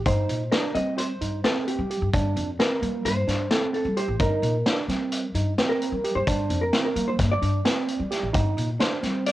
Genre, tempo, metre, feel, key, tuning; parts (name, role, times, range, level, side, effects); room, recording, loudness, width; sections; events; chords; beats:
progressive instrumental, band music in an uneven meter; 261 BPM (eighths); 9/8; straight; A4 = 441 Hz
upright bass; bass; 0.0-9.3 s; A1 to G3; -27 LUFS; left 1 dB
hollow-body jazz guitar; accompaniment; 0.1-9.3 s; G4 to Eb5; -28 LUFS; equal; double-tracked left and right, cassette tape
tine electric piano; arpeggios; 0.1-9.3 s; Bb3 to G4; -29 LUFS; right 4 dB; auto-pan, cassette tape
vintage drum kit; drums; 0.1-9.3 s; hi-hat, kick drum, snare drum; -26 LUFS; left 1 dB; cassette tape
light reverb; home recording on cassette; -22 LUFS; side -15 dB against mid
0.0-9.3 A section
hollow-body jazz guitar solo 0.0-9.3
0.1 Cm7/G; 2.1 Gm7; 3.0 D5/G; 4.2 Cm7/G; 6.3 Gm7; 7.2 D5/G; 8.3 Cm7/G
| 0.06 0.29 0.52 0.75 0.98 1.21 1.44 1.67 1.90 | 2.13 2.36 2.59 2.82 3.05 3.28 3.51 3.74 3.97 | 4.20 4.43 4.66 4.89 5.12 5.35 5.58 5.81 6.04 | 6.27 6.50 6.73 6.96 7.19 7.42 7.65 7.88 8.11 | 8.34 8.57 8.80 9.03 9.26